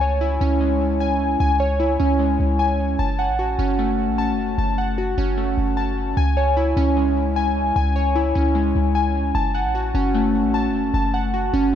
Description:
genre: hip hop, trap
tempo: 151 BPM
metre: 4/4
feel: half-time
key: C# minor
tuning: A4 = 440 Hz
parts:
  - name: glassy digital keys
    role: arpeggios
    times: 0.0-11.8 s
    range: G#3 to A5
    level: -20 LUFS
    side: equal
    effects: chorus, low-pass filter, ping-pong delay
  - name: clean 808-style bass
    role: bass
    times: 0.0-11.8 s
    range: F#1 to C#2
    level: -22 LUFS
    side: equal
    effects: none
room: light reverb, digital ambience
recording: none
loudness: -18 LUFS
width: side -9 dB against mid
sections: 0.0-6.2 A section; 6.2-11.8 B section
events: none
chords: 0.0 C#m; 3.0 F#m; 6.2 C#m; 9.3 F#m

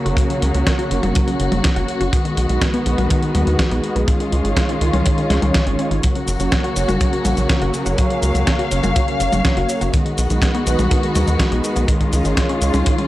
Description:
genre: italo disco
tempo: 123 BPM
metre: 4/4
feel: straight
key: F# major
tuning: A4 = 439 Hz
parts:
  - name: dark studio string section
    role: sustained chords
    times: 0.0-13.1 s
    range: C#3 to E#5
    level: -22 LUFS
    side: left 1 dB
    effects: none
  - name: mellow synth brass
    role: stabs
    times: 0.0-13.1 s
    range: G#3 to C#5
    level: -26 LUFS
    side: right 3 dB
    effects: chorus, phaser, tape echo
  - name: wide unison pluck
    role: arpeggios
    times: 0.1-13.1 s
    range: D#3 to C#5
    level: -27 LUFS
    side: left 2 dB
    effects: tape echo
  - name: tight sequencer bass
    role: bass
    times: 0.1-12.8 s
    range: F#1 to D#2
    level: -20 LUFS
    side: equal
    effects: none
  - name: dusty soul sampler-style drum kit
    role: drums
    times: 0.1-13.1 s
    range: cabasa, hi-hat, snare drum, toms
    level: -23 LUFS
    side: equal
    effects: studio reverb
  - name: kick drum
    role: drums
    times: 0.2-13.0 s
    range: none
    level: -20 LUFS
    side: equal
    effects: studio reverb
room: studio reverb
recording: dry, gritty hardware recording, transformer saturation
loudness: -15 LUFS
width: side -16 dB against mid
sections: 0.0-13.1 A section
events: none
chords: 0.0 F#; 2.1 B6; 4.1 C#add9; 6.0 F#; 9.9 B6; 11.9 C#add9

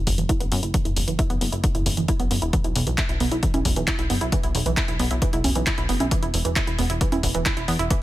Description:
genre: uplifting trance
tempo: 134 BPM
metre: 4/4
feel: straight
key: unclear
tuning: A4 = 441 Hz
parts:
  - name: plucky analog bass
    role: bass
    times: 0.0-7.9 s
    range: E1 to F#2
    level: -25 LUFS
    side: equal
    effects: sidechain pumping
  - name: analog pluck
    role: arpeggios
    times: 0.1-7.9 s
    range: E2 to E4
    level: -27 LUFS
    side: right 3 dB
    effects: chorus, cassette tape, sidechain pumping, dub echo
  - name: electronic kick drum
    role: drums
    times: 0.1-8.0 s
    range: none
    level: -24 LUFS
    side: equal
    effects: none
  - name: punchy analog drum machine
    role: drums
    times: 0.1-8.0 s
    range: congas, handclaps, hi-hat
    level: -27 LUFS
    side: equal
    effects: sidechain pumping on hats, sidechain pumping on perc
room: little or no reverb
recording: none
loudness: -20 LUFS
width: side -15 dB against mid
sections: 0.0-8.0 A section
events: filter sweep on synth arpeggio sound 0.0-8.0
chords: 0.0 Esus2; 2.5 B5; 6.1 E5

